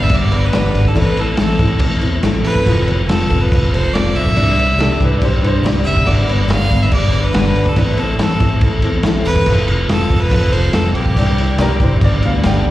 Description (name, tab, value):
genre	folk rock and heartland rock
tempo	141 BPM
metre	4/4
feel	straight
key	G mixolydian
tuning	A4 = 440 Hz
part	clear fiddle	melody	0.0-11.8 s	G4 to F5	-21 LUFS	right 2 dB	plate reverb, analog delay
part	picked steel-string acoustic guitar	accompaniment	0.0-12.7 s	G2 to B4	-20 LUFS	left 4 dB	plate reverb, slapback echo
part	fingered electric bass	bass	0.0-12.7 s	E1 to G2	-16 LUFS	equal	none
part	vintage drum kit	drums	0.1-12.7 s	crash cymbal, kick drum, snare drum	-17 LUFS	equal	none
part	bright upright piano	second line	4.8-5.7, 11.6-12.7 s	A4 to G5	-23 LUFS	equal	plate reverb, slapback echo
room	little or no reverb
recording	live gig heard through the venue's PA, recital hall reverb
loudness	-12 LUFS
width	side -15 dB against mid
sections	0.0-12.7 A section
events	none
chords	0.0 G; 1.0 Am; 2.7 F; 4.4 Cadd9; 6.1 G; 7.8 Am; 9.5 F; 11.2 Cadd9; 12.0 G